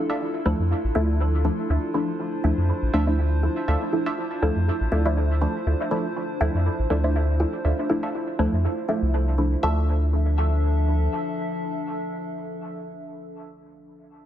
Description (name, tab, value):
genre	dub techno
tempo	121 BPM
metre	4/4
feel	swing 55% on 16ths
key	D minor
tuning	A4 = 441 Hz
part	warbly tape-like pad	sustained chords	0.0-13.7 s	F3 to E5	-30 LUFS	equal	chorus, built-in reverb
part	filtered dub chord stab	stabs	0.0-13.7 s	F3 to E5	-26 LUFS	equal	chorus, phaser, dub echo
part	filtered dub chord stab	riff	0.1-13.7 s	D4 to E5	-35 LUFS	right 2 dB	chorus, dub echo
part	pure sine sub bass	bass	0.5-11.1 s	A1 to F2	-22 LUFS	equal	none
room	light reverb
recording	dense, heavily limited modern master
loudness	-21 LUFS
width	side -11 dB against mid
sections	0.0-9.6 A section; 9.6-13.6 B section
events	none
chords	0.0 Dmadd9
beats	0.21 0.70 1.20 | 1.70 2.19 2.69 3.18 | 3.68 4.18 4.67 5.17 | 5.66 6.16 6.66 7.15 | 7.65 8.14 8.64 9.13 | 9.63 10.13 10.62 11.12 | 11.61 12.11 12.61 13.10